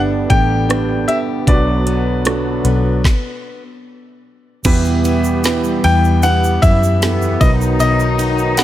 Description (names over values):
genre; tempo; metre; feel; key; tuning
pop ballad; 77 BPM; 4/4; straight; E minor; A4 = 440 Hz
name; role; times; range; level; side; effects
felt-muted upright piano; accompaniment; 0.0-8.6 s; G2 to D5; -20 LUFS; right 5 dB; none
hand-pumped harmonium; sustained chords; 0.0-8.6 s; D3 to G4; -26 LUFS; equal; none
fingerpicked plugged-in steel-string acoustic guitar; arpeggios; 0.0-8.6 s; E2 to G4; -24 LUFS; left 6 dB; none
vintage muted fingered electric bass; bass; 0.0-8.6 s; G1 to F#2; -17 LUFS; equal; none
clear concert grand piano; melody; 0.3-8.6 s; D5 to G5; -19 LUFS; left 2 dB; none
smooth R&B drum kit; drums; 0.3-8.6 s; crash cymbal, hi-hat, kick drum, ride cymbal, rim click, snare drum; -17 LUFS; equal; none
egg shaker; percussion; 4.6-8.6 s; none; -31 LUFS; right 9 dB; none
warm studio cello section; second line; 4.7-8.6 s; G3 to D#4; -23 LUFS; left 3 dB; tape echo
room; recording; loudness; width
light reverb, small room ambience; none; -12 LUFS; side -13 dB against mid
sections
0.0-4.6 A section; 4.6-8.6 B section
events
stop 3.0-4.6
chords
0.0 G; 1.5 Bm; 4.6 Em; 7.4 B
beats
0.69 | 1.47 2.25 3.04 3.85 | 4.65 5.44 6.23 7.01 | 7.79 8.58